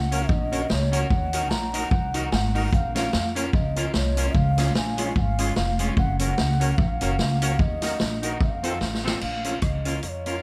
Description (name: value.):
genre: ska.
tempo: 148 BPM.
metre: 4/4.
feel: swing 57% on 8ths.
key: unclear.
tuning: A4 = 440 Hz.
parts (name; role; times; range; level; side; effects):
mellow bass bansuri; melody; 0.0-10.4 s; Db5 to Bb5; -33 LUFS; equal; tape echo.
upright bass; bass; 0.0-10.4 s; F1 to F2; -29 LUFS; equal; none.
electric guitar at the edge of break-up; accompaniment; 0.1-10.4 s; Ab3 to Bb4; -34 LUFS; equal; spring reverb, tape echo.
tonewheel organ; stabs; 0.1-10.4 s; C4 to Eb5; -37 LUFS; equal; slow rotary speaker, tape echo.
street-band drum kit; drums; 0.1-10.3 s; crash cymbal, hi-hat, kick drum, rim click, snare drum; -28 LUFS; equal; tape echo.
room: light reverb.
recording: none.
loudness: -24 LUFS.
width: mono.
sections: 0.0-9.2 A section; 9.2-10.4 B section.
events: drum fill 8.8-9.2.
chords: 0.0 Gb; 1.1 Ebm; 2.7 Bbm; 4.3 Db; 6.0 Gb; 7.6 Ebm; 8.4 F; 9.2 Bbm.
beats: 0.28 0.69 | 1.10 1.50 1.91 2.32 | 2.72 3.13 3.54 3.94 | 4.35 4.75 5.16 5.56 | 5.97 6.38 6.78 7.19 | 7.59 8.00 8.40 8.81 | 9.21 9.62 10.03.